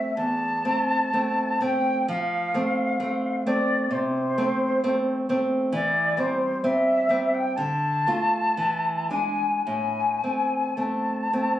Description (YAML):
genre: romantic duo for flute and classical guitar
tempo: 53-68 BPM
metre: 4/4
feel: rubato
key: A minor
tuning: A4 = 439 Hz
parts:
  - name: concert flute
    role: melody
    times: 0.0-11.6 s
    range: C5 to A5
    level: -24 LUFS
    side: left 1 dB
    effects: none
  - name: nylon-string guitar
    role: accompaniment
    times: 0.0-11.6 s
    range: E2 to F4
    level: -26 LUFS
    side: right 1 dB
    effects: none
room: light reverb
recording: recorded on a phone in the room, club reverb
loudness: -22 LUFS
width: side -12 dB against mid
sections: 0.0-11.6 A section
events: none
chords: 0.0 Am; 2.1 F; 5.7 C/E; 7.6 Dm; 8.6 E7; 9.6 Am